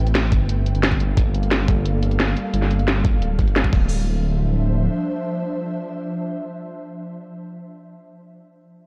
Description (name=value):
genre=liquid drum and bass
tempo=176 BPM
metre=4/4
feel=straight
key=D minor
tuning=A4 = 440 Hz
part: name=ethereal airy pad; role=sustained chords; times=0.0-7.3 s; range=F3 to G5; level=-30 LUFS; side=equal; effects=ensemble chorus, built-in reverb, sidechain pumping
part: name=dark detuned saw bass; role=bass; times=0.0-4.9 s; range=D1 to A1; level=-23 LUFS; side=equal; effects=tube saturation
part: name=drum and bass drum kit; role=drums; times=0.1-3.8 s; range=crash cymbal, hi-hat, snare drum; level=-26 LUFS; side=equal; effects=low-pass filter on hats, low-pass filter on snare, low-pass filter on cymbals, low-pass filter on room
part: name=electronic kick drum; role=drums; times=0.3-3.8 s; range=none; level=-22 LUFS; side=equal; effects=none
room=light reverb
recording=none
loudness=-21 LUFS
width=mono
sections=0.0-3.9 A section; 3.9-6.6 B section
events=none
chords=0.5 Gm9; 3.7 Dm9